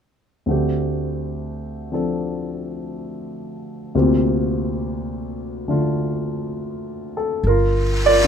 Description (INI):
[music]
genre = jazz ballad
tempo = 69 BPM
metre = 4/4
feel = swing 66% on 8ths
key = unclear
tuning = A4 = 438 Hz
[part]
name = warm concert grand piano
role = accompaniment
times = 0.5-8.3 s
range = D2 to D5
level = -20 LUFS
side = equal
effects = none
[part]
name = upright bass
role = bass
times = 7.4-8.3 s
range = G1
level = -19 LUFS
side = equal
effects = none
[part]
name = brushed snare drum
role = drums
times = 7.4-8.3 s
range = none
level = -25 LUFS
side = left 1 dB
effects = none
[sound]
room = light reverb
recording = minimal, uncompressed stereo recording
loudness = -20 LUFS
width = side -7 dB against mid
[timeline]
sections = 0.5-7.4 A section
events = none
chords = 0.5 D7sus4; 3.9 C9sus4/D; 7.4 Gm7